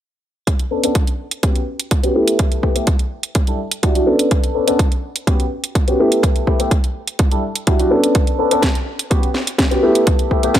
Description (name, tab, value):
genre	filtered disco house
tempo	125 BPM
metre	4/4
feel	straight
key	unclear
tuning	A4 = 440 Hz
part	electronic kick drum	drums	0.5-10.6 s	none	-16 LUFS	equal	overdrive
part	house drum kit	drums	0.5-10.6 s	hi-hat, snare drum	-21 LUFS	right 1 dB	overdrive, sidechain pumping on hats
part	dark grand piano	accompaniment	0.7-10.5 s	G3 to A4	-17 LUFS	left 1 dB	phaser, vintage 12-bit sampler grit, sidechain pumping, low-pass filter
room	digital ambience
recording	none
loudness	-14 LUFS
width	side -11 dB against mid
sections	0.5-10.6 A section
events	filter sweep on grand piano 0.5-10.6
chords	0.5 Bm9; 1.4 Gmaj7#11/B; 2.2 G69; 3.1 Em9; 4.3 Bm9; 5.3 Gmaj7#11/B; 6.0 G69; 7.0 Em9; 8.2 Bm9; 9.1 Gmaj7#11/B; 9.8 G69